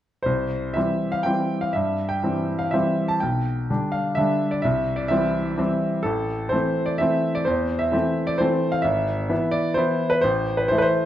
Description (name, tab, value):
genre	classical, piano waltz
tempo	117-138 BPM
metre	3/4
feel	rubato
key	C major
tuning	A4 = 440 Hz
part	bright baby grand piano	solo	0.2-11.1 s	G#1 to A5	-20 LUFS	equal	none
room	moderate recital hall reverb, RT60 1.3 s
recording	dark, warm production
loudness	-20 LUFS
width	side -12 dB against mid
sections	0.3-11.1 A section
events	none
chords	0.3 C; 3.2 G/B; 4.6 C; 6.1 Am; 8.9 E/G#; 10.3 Am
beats	| 0.25 0.76 1.26 | 1.75 2.23 2.74 | 3.23 3.69 4.17 | 4.65 5.12 5.59 | 6.06 6.54 7.02 | 7.48 7.93 8.41 | 8.86 9.31 9.79 | 10.25 10.72